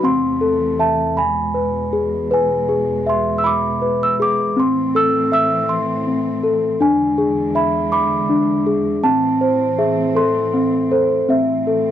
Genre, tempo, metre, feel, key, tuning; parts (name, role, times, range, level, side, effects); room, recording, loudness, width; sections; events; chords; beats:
children's music, lullaby; 53 BPM (dotted quarters); 6/8; straight; A harmonic minor; A4 = 441 Hz
celesta; melody; 0.0-11.9 s; C4 to E6; -16 LUFS; left 1 dB
warm chamber string section; sustained chords; 0.0-11.9 s; E2 to C4; -24 LUFS; right 2 dB; stereo widening
light reverb; dry, close 1970s-style studio recording; -15 LUFS; side -10 dB against mid
0.0-11.3 A section
0.0 Am/E; 1.2 E; 4.6 Am; 6.8 E7; 9.0 Am
| 0.03 1.16 | 2.31 3.44 | 4.57 5.69 | 6.81 7.92 | 9.03 10.16 | 11.29